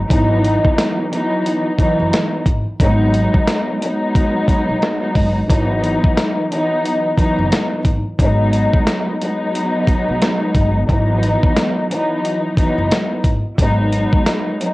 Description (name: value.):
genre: hip hop, boom-bap hip-hop.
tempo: 89 BPM.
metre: 4/4.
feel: swing 61% on 16ths.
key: unclear.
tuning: A4 = 440 Hz.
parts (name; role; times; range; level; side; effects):
upright bass; bass; 0.0-14.0 s; F#1 to B1; -19 LUFS; equal; tube saturation.
dark studio string section; accompaniment; 0.1-14.7 s; E3 to D#4; -17 LUFS; equal; cassette tape, high-pass filter, low-pass filter.
dusty soul sampler-style drum kit; drums; 0.1-14.7 s; hi-hat, kick drum, snare drum; -17 LUFS; equal; cassette tape.
room: light reverb.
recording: home recording on cassette.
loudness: -14 LUFS.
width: side -19 dB against mid.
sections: 0.0-14.7 A section.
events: none.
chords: 0.1 F#13sus4; 2.8 G#m7; 5.5 F#13sus4; 8.2 G#m7; 10.9 F#13sus4; 13.6 G#m7.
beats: | 0.10 0.78 1.45 2.12 | 2.80 3.47 4.15 4.82 | 5.50 6.17 6.84 7.52 | 8.19 8.87 9.54 10.21 | 10.89 11.56 12.24 12.91 | 13.59 14.26.